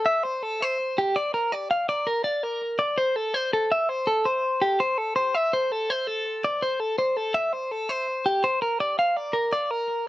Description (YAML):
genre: rock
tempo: 165 BPM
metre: 5/4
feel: straight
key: unclear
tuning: A4 = 440 Hz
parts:
  - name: clean electric guitar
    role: solo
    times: 0.0-10.1 s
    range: G4 to F5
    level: -23 LUFS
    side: equal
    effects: analog delay
room: light reverb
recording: none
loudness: -23 LUFS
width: side -16 dB against mid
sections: 0.0-10.1 A section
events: none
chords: none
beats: 0.06 0.42 0.79 | 1.15 1.51 1.88 2.24 2.61 | 2.97 3.34 3.70 4.07 4.43 | 4.79 5.16 5.52 5.89 6.25 | 6.62 6.98 7.34 7.71 8.07 | 8.43 8.80 9.16 9.52 9.89